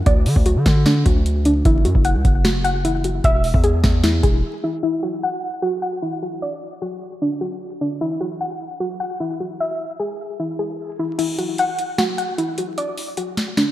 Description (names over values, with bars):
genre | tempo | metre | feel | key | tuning
hip hop, trap | 151 BPM | 4/4 | half-time | unclear | A4 = 436 Hz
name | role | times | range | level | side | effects
soft round pluck | arpeggios | 0.0-13.7 s | D4 to F#5 | -22 LUFS | equal | chorus, low-pass filter, ping-pong delay
distorted 808-style bass | bass | 0.0-4.4 s | E1 to D3 | -18 LUFS | equal | distortion
booming analog drum machine | drums | 0.1-4.4, 11.2-13.7 s | crash cymbal, hi-hat, kick drum, snare drum | -19 LUFS | equal | none
room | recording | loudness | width
moderate lush hall reverb, RT60 1.9 s | dreamy mix soaked in reverb, vinyl crackle, low-pass filter | -18 LUFS | side -14 dB against mid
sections
0.0-4.8 A section; 4.8-11.2 B section; 11.2-13.7 C section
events
break 4.4-4.8; filter sweep 4.8-11.2; kick muted 11.2-13.7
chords
0.1 D; 1.7 F#5; 3.2 E; 4.8 Esus2; 6.4 D; 8.0 Esus2; 9.6 E; 11.2 Esus2; 12.8 D